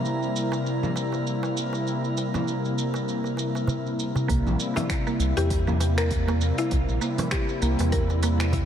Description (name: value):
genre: organic downtempo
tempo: 99 BPM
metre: 4/4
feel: swing 57% on 16ths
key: unclear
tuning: A4 = 440 Hz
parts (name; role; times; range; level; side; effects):
- warm analog pad; sustained chords; 0.0-8.7 s; C3 to E4; -27 LUFS; left 1 dB; wide subtle chorus, sidechain pumping
- drifting glass-harmonics texture; texture; 0.0-4.3 s; Bb4 to Bb5; -38 LUFS; right 1 dB; chorus, built-in reverb
- organic electronic drum kit; drums; 0.1-8.7 s; congas, finger snaps, hi-hat, shaker; -33 LUFS; right 1 dB; none
- darbuka; percussion; 0.5-8.7 s; none; -35 LUFS; right 2 dB; none
- mallet-like synth pluck; arpeggios; 4.3-8.7 s; Bb3 to Bb4; -28 LUFS; equal; chorus, analog delay
- round analog bass; bass; 4.3-8.7 s; Bb1 to E2; -24 LUFS; equal; sidechain pumping
- electronic kick drum; drums; 4.3-8.7 s; none; -28 LUFS; equal; none
room: wet cathedral reverb, RT60 4.9 s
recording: dreamy mix soaked in reverb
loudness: -23 LUFS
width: side -9 dB against mid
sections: 0.0-4.3 A section; 4.3-8.7 B section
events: none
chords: 0.0 C7